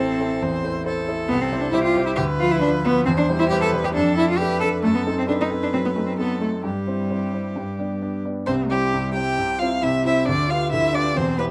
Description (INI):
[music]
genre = quick classical-period movement for piano trio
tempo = 135 BPM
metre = 4/4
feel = rubato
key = C major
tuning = A4 = 440 Hz
[part]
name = warm violin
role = melody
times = 0.0-11.4 s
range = G4 to G5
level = -28 LUFS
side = equal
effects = none
[part]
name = rich cello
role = second line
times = 0.0-11.5 s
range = G3 to A4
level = -26 LUFS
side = equal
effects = none
[part]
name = warm grand piano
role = accompaniment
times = 0.0-11.5 s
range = E1 to D5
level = -26 LUFS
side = equal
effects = none
[sound]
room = light reverb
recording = dark, warm production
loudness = -22 LUFS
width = mono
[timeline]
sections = 0.0-8.5 A section; 8.5-11.5 B section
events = none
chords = 0.0 Am; 1.3 C; 2.2 Bdim/D; 3.1 C/E; 4.0 Dm/F; 4.8 F#dim7; 6.6 C/G; 7.6 G; 8.5 C; 10.3 G7/D